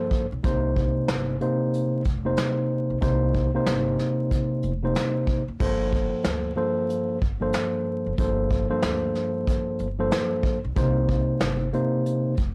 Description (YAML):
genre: hip hop, boom-bap hip-hop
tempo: 93 BPM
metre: 4/4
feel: swing 62% on 16ths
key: G minor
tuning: A4 = 439 Hz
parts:
  - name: mellow tine electric piano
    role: accompaniment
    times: 0.0-12.3 s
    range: G2 to C5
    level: -27 LUFS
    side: equal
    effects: cassette tape, high-pass filter, low-pass filter
  - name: soft brush drum kit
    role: drums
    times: 0.1-12.5 s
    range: crash cymbal, hi-hat, kick drum, snare drum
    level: -29 LUFS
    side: equal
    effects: none
  - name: upright bass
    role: bass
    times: 0.3-12.5 s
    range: F1 to D2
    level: -32 LUFS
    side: equal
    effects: none
room: light reverb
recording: vinyl crackle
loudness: -25 LUFS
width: mono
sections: 0.0-5.6 A section; 5.6-12.5 A section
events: none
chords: 0.4 Cm7; 5.6 Gm11; 10.8 Cm7